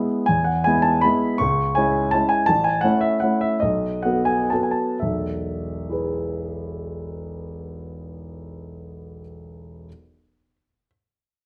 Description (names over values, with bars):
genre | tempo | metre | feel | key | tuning
classical, piano waltz | 113-177 BPM | 3/4 | rubato | E major | A4 = 439 Hz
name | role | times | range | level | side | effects
warm grand piano | solo | 0.0-9.9 s | E1 to C#6 | -23 LUFS | equal | none
room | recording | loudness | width
moderate large studio reverb, RT60 0.8 s | none | -21 LUFS | mono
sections
0.3-5.0 A section; 5.0-7.8 B section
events
slowing down 1.9-5.0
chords
0.3 E; 1.4 C#m; 2.5 A; 3.6 B7; 5.0 E